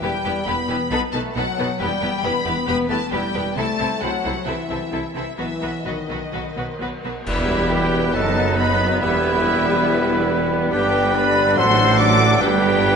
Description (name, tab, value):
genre	classical, dramatic, fast romantic movement for symphony orchestra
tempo	125-143 BPM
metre	4/4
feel	rubato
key	E minor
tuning	A4 = 440 Hz
part	warm symphonic violin section	melody	0.0-13.0 s	D#5 to D6	-25 LUFS	left 4 dB	none
part	rich symphonic violin section	second line	0.0-13.0 s	A3 to B4	-28 LUFS	left 2 dB	none
part	clear symphonic viola section	accompaniment	0.0-13.0 s	D3 to E4	-29 LUFS	equal	none
part	mellow French horn section	sustained chords	0.0-13.0 s	D#3 to D4	-26 LUFS	left 3 dB	none
part	rich symphonic cello section	bass	0.0-13.0 s	E2 to C3	-27 LUFS	right 3 dB	none
part	rich symphonic double bass section	bass	0.0-13.0 s	E1 to C2	-29 LUFS	right 5 dB	none
part	cymbal swell, clash cymbals and concert bass drum	percussion	3.6-8.1 s	none	-33 LUFS	equal	none
part	dark clarinet	second line	7.3-13.0 s	D4 to E4	-28 LUFS	left 3 dB	none
part	mellow hollow silver concert flute	second line	7.3-13.0 s	G4 to F#5	-25 LUFS	left 1 dB	none
part	warm oboe	second line	7.3-13.0 s	A4 to B4	-25 LUFS	right 3 dB	none
part	clear bassoon	accompaniment	7.3-13.0 s	F#3 to G3	-26 LUFS	right 2 dB	none
part	mellow trumpet section	stabs	7.3-13.0 s	E4 to D5	-23 LUFS	right 1 dB	none
part	clear tuba	bass	7.3-13.0 s	E1 to A1	-27 LUFS	right 4 dB	none
room	wet concert hall reverb, RT60 2.2 s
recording	nothing above 10.9 kHz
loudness	-17 LUFS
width	side -6 dB against mid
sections	0.0-7.3 A section; 7.3-13.0 B section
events	band accent 7.3-7.7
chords	0.0 Em; 0.9 B7; 1.8 Em; 3.6 Am/C; 5.4 B; 7.3 Em; 8.1 B7/F#; 9.0 Em; 10.7 G; 11.6 D7/A; 12.4 G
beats	| 0.03 0.47 0.91 1.36 | 1.80 2.24 2.68 3.13 | 3.57 4.02 4.47 4.92 | 5.38 5.86 6.33 6.80 | 7.27 7.71 8.14 8.57 | 9.01 9.44 9.87 10.30 | 10.72 11.15 11.57 11.99 | 12.41 12.84